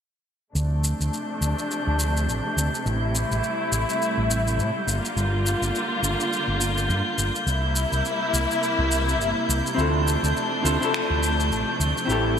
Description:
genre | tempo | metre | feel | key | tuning
sunset chillout | 104 BPM | 4/4 | swing 58% on 16ths | D minor | A4 = 440 Hz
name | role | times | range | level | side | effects
rich studio string section | sustained chords | 0.5-12.4 s | C3 to F4 | -25 LUFS | left 1 dB | low-pass filter
fingered electric bass | bass | 0.6-12.4 s | G1 to A2 | -24 LUFS | equal | none
electronic shaker and finger snaps | drums | 0.6-12.2 s | none | -31 LUFS | left 1 dB | gated reverb
drifting glass-harmonics texture | texture | 1.1-12.4 s | G6 | -31 LUFS | right 1 dB | chorus, built-in reverb
vintage hollow-body jazz guitar | accompaniment | 9.7-12.4 s | C4 to A4 | -25 LUFS | left 1 dB | auto-pan, ping-pong delay
room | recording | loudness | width
wet lush hall reverb, RT60 3.1 s | bright 1980s-style digital production | -21 LUFS | side -8 dB against mid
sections
0.5-12.4 A section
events
filter sweep on string section 0.5-12.4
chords
0.5 Dm7; 2.9 Am7; 4.9 Gm7; 7.5 C7; 9.8 Dm7

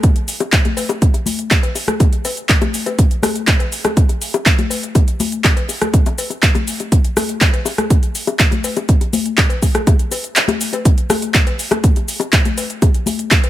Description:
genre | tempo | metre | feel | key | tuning
house | 122 BPM | 4/4 | straight | none | none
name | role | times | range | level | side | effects
electronic kick drum | drums | 0.0-13.4 s | none | -13 LUFS | equal | overdrive
pop drum kit | drums | 0.0-13.5 s | handclaps, hi-hat, rim click, shaker | -18 LUFS | right 1 dB | overdrive
bongos, congas and cowbell | percussion | 0.0-13.5 s | none | -22 LUFS | left 6 dB | sidechain pumping on perc
room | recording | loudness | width
little or no reverb | none | -13 LUFS | side -13 dB against mid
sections
0.0-13.5 A section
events
kick drops out 10.4-10.9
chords
none

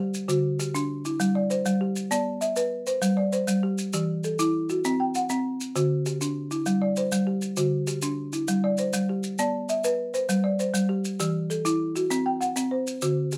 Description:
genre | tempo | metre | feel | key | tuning
southern african traditional, mbira-style interlocking cycle | 132 BPM (dotted quarters) | 12/8 | straight | G major | A4 = 436 Hz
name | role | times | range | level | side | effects
folk marimba with medium mallets | arpeggios | 0.0-13.4 s | D3 to G5 | -26 LUFS | equal | none
maracas | percussion | 0.1-13.4 s | none | -36 LUFS | equal | none
room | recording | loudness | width
little or no reverb | close, detailed microphones | -26 LUFS | mono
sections
0.0-13.4 A section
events
none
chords
0.3 D; 1.2 G5; 2.1 Bm; 3.0 G5; 3.9 Em; 4.8 C5; 5.8 D; 6.7 G5; 7.6 D; 8.5 G5; 9.4 Bm; 10.3 G5; 11.2 Em; 12.1 C5

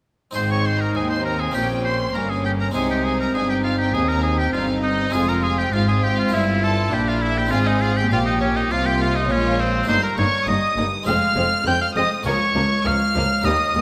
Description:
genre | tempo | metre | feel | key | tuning
classical, baroque-style concerto movement with solo episodes | 101 BPM | 4/4 | straight | Ab major | A4 = 438 Hz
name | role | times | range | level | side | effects
rich chamber violin section | melody | 0.3-13.8 s | C5 to G6 | -30 LUFS | equal | none
harpsichord | accompaniment | 0.3-13.8 s | Db2 to Bb4 | -31 LUFS | equal | none
rich chamber viola section | accompaniment | 0.3-13.8 s | F3 to E4 | -28 LUFS | equal | none
clear chamber double bass section | bass | 0.3-13.8 s | F1 to Eb2 | -28 LUFS | equal | none
bright oboe | melody | 0.4-13.8 s | C4 to G5 | -25 LUFS | equal | none
rich studio violin section | second line | 0.4-13.8 s | Bb3 to Ab4 | -31 LUFS | equal | none
rich studio cello section | bass | 0.4-13.8 s | Db2 to C3 | -29 LUFS | equal | none
room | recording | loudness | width
wet concert hall reverb, RT60 1.8 s | none | -20 LUFS | mono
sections
0.3-13.8 A section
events
none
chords
0.3 Ab; 1.5 Gdim/Bb; 2.7 Ab; 5.1 Fm; 6.3 Edim/G; 7.5 Fm/Ab; 9.9 Eb/G; 11.1 Fm; 12.3 Bbm/Db

